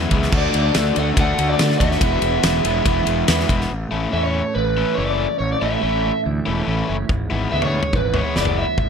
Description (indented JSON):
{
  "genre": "indie rock",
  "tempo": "142 BPM",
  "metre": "4/4",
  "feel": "straight",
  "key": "unclear",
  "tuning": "A4 = 440 Hz",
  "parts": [
    { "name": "overdriven electric guitar", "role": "riff", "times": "0.0-8.6 s", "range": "D3 to F#4", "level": "-24 LUFS", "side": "left 7 dB", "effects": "none" },
    { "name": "twelve-string electric guitar", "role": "riff", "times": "0.0-8.9 s", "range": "G#2 to G#4", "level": "-26 LUFS", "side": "right 7 dB", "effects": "ensemble chorus" },
    { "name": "fuzz fingered electric bass", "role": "bass", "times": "0.0-8.9 s", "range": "E1 to D3", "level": "-23 LUFS", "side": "equal", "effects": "overdrive" },
    { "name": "loose indie drum kit", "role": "drums", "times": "0.1-3.7, 7.1-8.9 s", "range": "crash cymbal, kick drum, ride cymbal, snare drum, toms", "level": "-21 LUFS", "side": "equal", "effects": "none" },
    { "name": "crunchy overdriven guitar", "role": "melody", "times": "0.4-8.9 s", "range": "B4 to F#5", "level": "-22 LUFS", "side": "equal", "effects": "none" }
  ],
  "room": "light reverb",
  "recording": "none",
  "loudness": "-17 LUFS",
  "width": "side -6 dB against mid",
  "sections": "0.0-3.7 A section; 3.7-8.9 B section",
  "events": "none",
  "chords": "0.3 D; 2.0 Eadd9; 3.7 A; 7.1 E",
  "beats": "| 0.33 0.75 1.17 1.59 | 2.02 2.44 2.86 3.29 | 3.71 4.13 4.56 4.98 | 5.40 5.83 6.25 6.67 | 7.10 7.52 7.95 8.37 | 8.79"
}